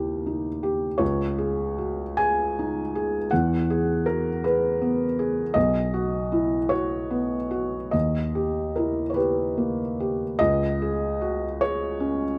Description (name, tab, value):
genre	neoclassical minimalist piano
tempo	48-55 BPM (dotted quarters)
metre	6/8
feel	rubato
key	C# dorian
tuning	A4 = 440 Hz
part	felt-muted upright piano	solo	0.0-12.4 s	B1 to G#5	-25 LUFS	equal	none
room	light reverb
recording	dark, warm production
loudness	-25 LUFS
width	mono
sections	0.0-10.4 A section; 10.4-12.4 B section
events	none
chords	0.0 D#; 1.0 C#sus2; 3.3 E; 5.6 B; 7.9 D#; 10.4 C#sus2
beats	| 1.01 2.19 | 3.31 4.43 | 5.55 6.73 | 7.94 9.17 | 10.39 11.60